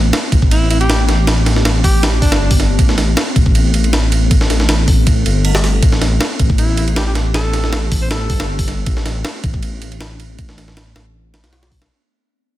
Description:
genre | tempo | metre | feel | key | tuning
drum and bass, jungle | 158 BPM | 4/4 | straight | A minor | A4 = 440 Hz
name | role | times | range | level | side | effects
ethereal airy pad | sustained chords | 0.0-11.9 s | A3 to A4 | -24 LUFS | left 1 dB | ensemble chorus, built-in reverb
dark detuned saw bass | bass | 0.0-11.9 s | G1 to B1 | -16 LUFS | equal | none
breakbeat sampler-style drum kit | drums | 0.1-11.9 s | hi-hat, kick drum, ride cymbal, snare drum | -15 LUFS | equal | none
clear alto saxophone | melody | 0.5-2.5, 6.6-8.5 s | D4 to C5 | -23 LUFS | equal | dub echo
room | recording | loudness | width
digital ambience | dense, heavily limited modern master | -12 LUFS | side -14 dB against mid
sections
0.0-11.9 A section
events
drop 0.0-11.9; fade-out 5.8-11.9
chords
0.0 Am9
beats
0.13 0.51 0.89 | 1.27 1.65 2.03 2.41 | 2.79 3.17 3.55 3.93 | 4.31 4.69 5.07 5.45 | 5.83 6.21 6.59 6.97 | 7.35 7.73 8.11 8.49 | 8.87 9.25 9.63 10.01 | 10.38 10.77 11.14 11.52

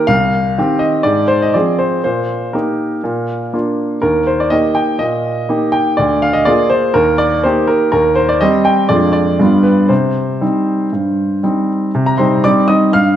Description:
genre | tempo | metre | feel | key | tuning
classical-period piano sonatina | 122 BPM | 4/4 | straight | Eb major, C minor from 7.9 s | A4 = 442 Hz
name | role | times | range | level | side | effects
clear baby grand piano | solo | 0.0-13.2 s | C2 to F6 | -12 LUFS | equal | none
room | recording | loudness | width
moderate recital hall reverb, RT60 1.5 s | dark, warm production | -12 LUFS | side -10 dB against mid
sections
0.0-11.9 A section; 11.9-13.2 B section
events
none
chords
0.1 Cm; 1.1 Fm/Ab; 2.0 Eb/Bb; 3.0 Bb; 4.0 Eb; 6.0 Bb7/D; 7.0 Eb; 8.9 Ddim/F; 9.4 G7; 9.9 Cm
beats
| 0.09 0.57 1.05 1.54 | 2.04 2.54 3.04 3.54 | 4.04 4.53 5.02 5.50 | 5.99 6.48 6.96 7.44 | 7.93 8.41 8.90 9.40 | 9.90 10.42 10.93 11.44 | 11.94 12.44 12.93

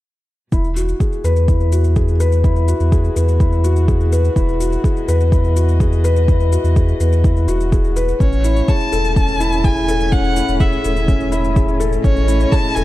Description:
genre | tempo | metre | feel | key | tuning
piano and strings electronica | 125 BPM | 4/4 | straight | E major | A4 = 440 Hz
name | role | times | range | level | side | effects
dark string quartet | sustained chords | 0.5-12.8 s | A2 to D#5 | -30 LUFS | right 1 dB | sidechain pumping
felt-muted upright piano | riff | 0.5-12.8 s | C#4 to B4 | -20 LUFS | left 2 dB | ping-pong delay
warm sub bass | bass | 0.5-12.8 s | E1 to E2 | -16 LUFS | equal | sidechain pumping
electronic kick drum | drums | 0.5-12.6 s | none | -16 LUFS | equal | overdrive
shaker | drums | 0.5-12.8 s | none | -35 LUFS | left 6 dB | overdrive
rich violin | melody | 8.2-12.8 s | C#5 to A5 | -22 LUFS | equal | none
room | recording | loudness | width
small room reverb | dark, warm production | -13 LUFS | side -16 dB against mid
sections
0.5-12.8 A section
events
fade-in on string quartet 0.5-12.8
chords
0.5 Eadd9; 8.2 Amaj7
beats
| 0.52 1.00 1.48 1.96 | 2.44 2.92 3.40 3.88 | 4.36 4.84 5.32 5.80 | 6.28 6.76 7.24 7.72 | 8.20 8.68 9.16 9.64 | 10.12 10.60 11.08 11.56 | 12.04 12.52

